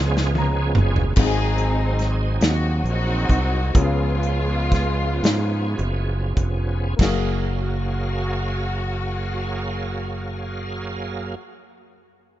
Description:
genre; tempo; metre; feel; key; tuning
slow gospel; 31-49 BPM (dotted quarters); 6/8; straight; F# major; A4 = 440 Hz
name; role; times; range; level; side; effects
warm studio string section; melody; 0.0-11.3 s; G#3 to G#4; -29 LUFS; left 2 dB; tape echo
warm grand piano; accompaniment; 0.0-12.4 s; F#2 to A#5; -30 LUFS; left 5 dB; none
bright tonewheel organ; sustained chords; 0.0-11.4 s; E#3 to E#5; -29 LUFS; right 3 dB; slow rotary speaker, chorus vibrato
modern bright fingered electric bass; bass; 0.0-11.3 s; E#1 to G#2; -23 LUFS; equal; none
natural country drum kit; drums; 0.2-7.3 s; crash cymbal, hi-hat, kick drum, snare drum, toms; -21 LUFS; equal; none
room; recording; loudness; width
small room reverb; rough home demo mix, nothing above 7.6 kHz; -20 LUFS; side -13 dB against mid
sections
0.0-1.2 A section; 1.2-7.0 B section; 7.0-10.9 C section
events
drum fill 0.0-1.2; grand piano fill 0.0-1.2; slowing down 1.2-7.0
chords
0.0 C#7; 1.2 G#7; 3.7 C#7; 7.0 F#maj9

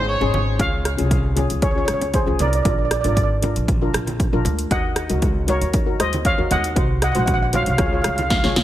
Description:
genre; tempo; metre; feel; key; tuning
calypso; 117 BPM; 4/4; straight; Db major; A4 = 440 Hz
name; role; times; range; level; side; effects
upright bass; bass; 0.0-8.6 s; Ab1 to Eb2; -23 LUFS; equal; none
steel pan; accompaniment; 0.2-8.6 s; Db4 to Db5; -26 LUFS; left 2 dB; none
congas; percussion; 0.2-8.6 s; none; -29 LUFS; equal; none
steel pan; melody; 0.6-8.4 s; Ab4 to Gb5; -23 LUFS; right 1 dB; digital delay
80s electronic pad drums; drums; 0.6-8.6 s; hi-hat, kick drum, rim click, snare drum; -21 LUFS; equal; none
room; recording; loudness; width
light reverb, small room ambience; none; -17 LUFS; side -13 dB against mid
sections
0.0-8.6 A section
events
drum fill 8.3-8.6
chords
0.0 Absus4; 0.6 Dbmaj7; 2.7 Bb7; 4.7 Ebm7; 6.8 Cm7b5; 7.8 Db

